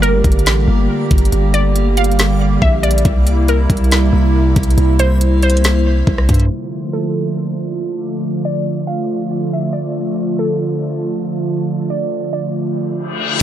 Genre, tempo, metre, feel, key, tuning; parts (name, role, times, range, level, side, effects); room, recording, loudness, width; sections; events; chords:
hip hop, atmospheric cloud-rap; 139 BPM; 4/4; half-time; D minor; A4 = 440 Hz
glassy wavetable pluck; melody; 0.0-12.9 s; A4 to F5; -23 LUFS; equal; chorus, tape echo
hollow soft pad; sustained chords; 0.0-13.4 s; C3 to G4; -18 LUFS; right 1 dB; chorus, sidechain pumping
long sustained 808-style bass; bass; 0.0-6.5 s; G1 to G2; -14 LUFS; equal
trap drum kit; drums; 0.0-6.5 s; hi-hat, kick drum, rim click, snare drum; -17 LUFS; equal
backwards swelling texture; texture; 0.0-13.4 s; A3 to D5; -29 LUFS; left 1 dB; built-in reverb
reverse cymbal; sound effects; 13.1-13.4 s; -18 LUFS; left 8 dB
little or no reverb; low-pass filter; -13 LUFS; side -11 dB against mid
0.0-6.5 A section; 6.5-13.4 B section
filter sweep 6.5-13.4; reverse cymbal 13.1-13.4
0.0 Gm; 3.1 C7; 6.5 Dm